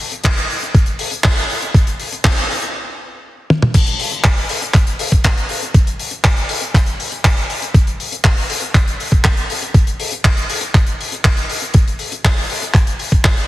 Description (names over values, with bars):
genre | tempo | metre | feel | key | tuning
italo disco | 120 BPM | 4/4 | straight | none | none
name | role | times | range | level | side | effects
damped 70s drum kit | drums | 0.0-13.5 s | crash cymbal, handclaps, hi-hat, toms | -18 LUFS | left 1 dB | studio reverb
electronic kick drum | drums | 0.2-13.3 s | none | -13 LUFS | equal | studio reverb
room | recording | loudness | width
moderate lush hall reverb, RT60 2.1 s | heavily compressed radio sound, multiband compression | -13 LUFS | side -16 dB against mid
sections
0.0-3.7 A section; 3.7-13.5 B section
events
stop 2.7-3.7; drum fill 3.5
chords
none